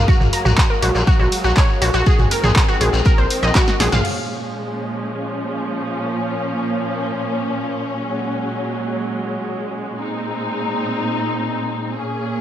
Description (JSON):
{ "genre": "melodic techno", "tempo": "121 BPM", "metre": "4/4", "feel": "straight", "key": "Bb minor", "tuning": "A4 = 440 Hz", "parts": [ { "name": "muted studio string section", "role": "sustained chords", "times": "0.0-12.4 s", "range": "Bb2 to Ab4", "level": "-22 LUFS", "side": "equal", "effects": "sidechain pumping" }, { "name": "gritty driven synth bass", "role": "bass", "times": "0.0-4.0 s", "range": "Bb1", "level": "-19 LUFS", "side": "equal", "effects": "sidechain pumping" }, { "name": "wide unison pluck", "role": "arpeggios", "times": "0.1-4.0 s", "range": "Gb4 to Bb5", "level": "-20 LUFS", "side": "equal", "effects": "vintage 12-bit sampler grit, sidechain pumping, digital delay" }, { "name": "electronic kick drum", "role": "drums", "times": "0.1-3.7 s", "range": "none", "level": "-15 LUFS", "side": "equal", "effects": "none" }, { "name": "shekere", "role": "percussion", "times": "0.1-4.0 s", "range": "none", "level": "-30 LUFS", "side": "left 3 dB", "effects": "none" }, { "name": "punchy analog drum machine", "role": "drums", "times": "0.2-4.1 s", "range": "crash cymbal, handclaps, hi-hat, snare drum, toms", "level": "-20 LUFS", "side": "right 1 dB", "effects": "none" } ], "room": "light reverb", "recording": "bright 1980s-style digital production", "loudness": "-17 LUFS", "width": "side -11 dB against mid", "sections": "0.0-4.0 A section; 4.0-12.4 B section", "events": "drum fill 3.6-4.0; band accent 3.9", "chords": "0.1 Gbadd9/Bb; 2.1 Ab/Bb; 4.0 Bbm7; 8.0 Gbadd9/Bb; 10.0 Ab/Bb", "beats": "| 0.08 0.58 1.07 1.57 | 2.06 2.56 3.06 3.55 | 4.05 4.54 5.04 5.54 | 6.03 6.53 7.02 7.52 | 8.02 8.51 9.01 9.50 | 10.00 10.49 10.99 11.49 | 11.98" }